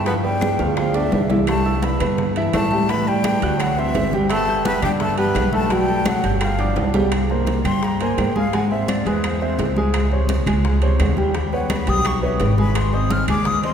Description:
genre	Afro-Cuban jazz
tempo	170 BPM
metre	4/4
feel	straight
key	unclear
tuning	A4 = 439 Hz
part	breathy jazz flute	melody	0.0-13.7 s	B4 to F6	-25 LUFS	left 2 dB	none
part	breathy tenor saxophone	second line	0.0-6.9 s	E3 to B3	-27 LUFS	right 1 dB	none
part	warm grand piano	accompaniment	0.0-13.7 s	C3 to G6	-22 LUFS	right 1 dB	none
part	upright bass	bass	0.0-13.7 s	G1 to A2	-22 LUFS	equal	none
part	bongos	percussion	0.1-13.7 s	none	-31 LUFS	left 2 dB	none
part	congas	percussion	0.1-13.7 s	none	-26 LUFS	equal	none
part	timbales	percussion	0.1-13.7 s	none	-29 LUFS	right 4 dB	none
part	claves	percussion	0.4-13.5 s	none	-37 LUFS	left 1 dB	none
room	wet cathedral reverb, RT60 4.9 s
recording	recorded in a church or concert hall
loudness	-17 LUFS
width	side -8 dB against mid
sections	0.0-7.1 A section; 7.1-13.7 B section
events	drum fill 0.1-1.5, 6.6-7.1; flute solo 7.1-13.7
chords	0.1 G6; 1.5 Cmaj7; 2.9 A5; 3.6 D9; 4.3 Gadd9; 5.7 B5; 6.4 G5; 7.1 C5; 8.5 Abaug; 9.9 Dbsus2; 11.3 Ebaug7; 12.8 Ab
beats	| 0.07 0.42 0.77 1.12 | 1.48 1.83 2.18 2.54 | 2.89 3.24 3.60 3.95 | 4.30 4.66 5.01 5.36 | 5.71 6.07 6.42 6.77 | 7.12 7.47 7.83 8.18 | 8.53 8.88 9.24 9.59 | 9.94 10.29 10.64 11.00 | 11.35 11.70 12.05 12.40 | 12.76 13.11 13.46

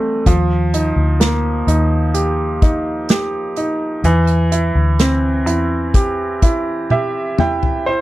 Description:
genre	pop ballad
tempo	63 BPM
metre	4/4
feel	straight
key	unclear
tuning	A4 = 444 Hz
part	clear concert grand piano	accompaniment	0.0-8.0 s	E3 to G5	-18 LUFS	right 1 dB	none
part	vintage muted fingered electric bass	bass	0.3-7.3 s	D2 to E2	-17 LUFS	equal	none
part	unplugged drum kit	drums	0.3-7.9 s	hi-hat, kick drum, snare drum, toms	-16 LUFS	equal	none
room	little or no reverb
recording	dry, close 1970s-style studio recording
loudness	-14 LUFS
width	side -16 dB against mid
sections	0.0-7.9 A section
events	grand piano fill 6.4-7.9; drum fill 6.9-7.9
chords	0.3 Ebadd9; 4.0 Cadd9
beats	| 0.26 1.21 2.15 3.09 | 4.04 4.99 5.95 6.91 | 7.88

